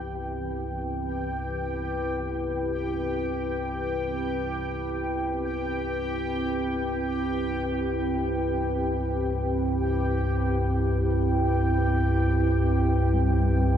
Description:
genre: dark ambient drone.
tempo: free time.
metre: none.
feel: none.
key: C major.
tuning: A4 = 440 Hz.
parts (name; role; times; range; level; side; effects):
deep dark ambient pad; sustained chords; 0.0-13.8 s; C4 to B4; -28 LUFS; right 1 dB; chorus, built-in reverb.
gamelan-type bronze metallophone; arpeggios; 0.0-5.4, 13.1-13.8 s; E3 to G3; -42 LUFS; left 2 dB; none.
deep rumbling drone; drone; 0.0-13.8 s; C2 to G2; -28 LUFS; left 1 dB; built-in reverb, lush chorus.
bubbling stepped-filter texture; texture; 0.0-13.8 s; G4 to G5; -32 LUFS; left 1 dB; chorus, built-in reverb.
room: wet huge ambient reverb, RT60 8.0 s.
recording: none.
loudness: -24 LUFS.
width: side -9 dB against mid.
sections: 0.0-13.8 A section.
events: none.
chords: 0.0 C.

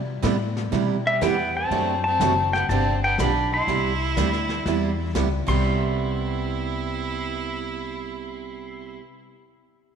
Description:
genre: country, western swing.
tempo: 122 BPM.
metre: 4/4.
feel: swing 68% on 8ths.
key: C major.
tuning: A4 = 439 Hz.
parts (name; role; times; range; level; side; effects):
upright bass; bass; 0.0-9.0 s; F#1 to C3; -27 LUFS; left 2 dB; none.
picked steel-string acoustic guitar; accompaniment; 0.2-9.0 s; C3 to G4; -26 LUFS; right 7 dB; none.
jazz brush drum kit; drums; 0.2-5.6 s; brushed snare drum, crash cymbal, hi-hat, kick drum, snare drum; -32 LUFS; left 4 dB; none.
pedal steel guitar; melody; 1.1-9.0 s; E5 to C6; -24 LUFS; left 3 dB; none.
clear fiddle; second line; 1.1-9.0 s; G3 to E4; -30 LUFS; right 6 dB; none.
room: wet echo chamber reverb, RT60 2.4 s.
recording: 1960s-style stereo.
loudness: -21 LUFS.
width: side -7 dB against mid.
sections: 0.0-1.7 A section; 1.7-5.6 B section; 5.6-9.6 C section.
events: none.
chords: 0.0 Cmaj7; 1.7 D7/F#; 2.7 G7sus4; 3.7 Cmaj7.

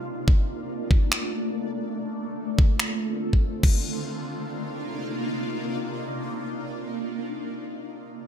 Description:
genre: future bass.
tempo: 143 BPM.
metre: 4/4.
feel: swing 56% on 16ths, half-time.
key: C dorian.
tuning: A4 = 440 Hz.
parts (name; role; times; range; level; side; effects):
shimmering ambient pad; sustained chords; 0.0-7.1 s; C3 to F4; -29 LUFS; equal; chorus, built-in reverb, phaser, sidechain pumping.
electronic kick drum; drums; 0.3-3.7 s; none; -19 LUFS; equal; studio reverb.
pop drum kit; drums; 1.1-3.7 s; crash cymbal, finger snaps; -28 LUFS; equal; studio reverb.
room: light reverb.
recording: none.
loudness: -24 LUFS.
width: side -9 dB against mid.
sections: 0.0-3.6 A section; 3.6-7.0 B section.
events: none.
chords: 0.3 Bbmaj7; 2.0 Dm7; 3.6 Cm11.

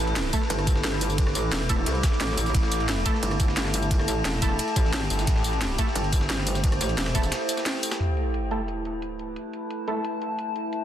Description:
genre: dark technical drum and bass.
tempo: 176 BPM.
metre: 4/4.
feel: straight.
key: A minor.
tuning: A4 = 440 Hz.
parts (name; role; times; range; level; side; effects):
metallic inharmonic drone; sustained chords; 0.0-10.8 s; A3 to B4; -32 LUFS; left 1 dB; chorus, built-in reverb, sidechain pumping.
wide detuned saw bass; bass; 0.0-0.3, 2.5-3.0, 5.1-5.8 s; G1 to A1; -27 LUFS; equal; chorus, overdrive.
warbly tape-like pad; texture; 0.0-10.8 s; E4 to D6; -32 LUFS; equal; chorus, built-in reverb, sidechain pumping.
breakbeat sampler-style drum kit; drums; 0.1-8.0 s; hi-hat, snare drum; -37 LUFS; equal; none.
drum and bass drum kit; drums; 0.2-10.8 s; hi-hat, ride cymbal, rim click, snare drum, tambourine; -30 LUFS; equal; overdrive, low-pass filter on hats, low-pass filter on snare, low-pass filter on perc, low-pass filter on cymbals, low-pass filter on room.
orchestra-hit-like synth stab; stabs; 0.3-10.0 s; A3 to A4; -34 LUFS; right 2 dB; built-in reverb, dub echo.
electronic kick drum; drums; 0.3-7.2 s; none; -24 LUFS; equal; overdrive.
metallic wobble bass; bass; 0.5-7.3 s; E1 to C2; -28 LUFS; equal; chorus, tube saturation.
sub drop; sound effects; 8.0-9.4 s; none; -29 LUFS; equal; none.
room: light reverb, digital ambience.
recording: dense, heavily limited modern master.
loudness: -23 LUFS.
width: side -10 dB against mid.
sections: 0.0-8.0 A section; 8.0-10.8 B section.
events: drop 0.0-8.0; break 7.3-8.0; impact 8.0-9.4; filter sweep on synth drone 8.0-10.8.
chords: 0.0 A5.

